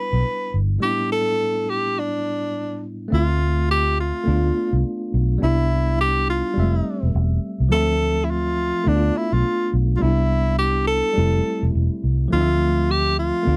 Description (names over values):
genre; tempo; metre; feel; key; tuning
lush 1970s-style soul; 104 BPM; 4/4; swing 58% on 16ths; D dorian; A4 = 440 Hz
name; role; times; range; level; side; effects
breathy tenor saxophone; melody; 0.0-13.6 s; D4 to B4; -25 LUFS; equal; none
tine electric piano; accompaniment; 0.0-13.6 s; A2 to E5; -28 LUFS; equal; overdrive
vintage muted fingered electric bass; bass; 0.1-13.6 s; E1 to D2; -22 LUFS; equal; none
room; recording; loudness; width
little or no reverb; dry, close 1970s-style studio recording; -21 LUFS; mono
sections
0.0-3.1 A section; 3.1-13.6 B section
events
none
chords
0.0 Cmaj9 (rootless); 0.8 A7sus4; 3.1 Dm7; 4.3 Bm7b5; 5.4 Cmaj9; 6.6 Fmaj7; 7.7 Dm7; 8.9 Bm7b5; 10.0 Cmaj9; 11.2 Fmaj7; 12.3 Dm7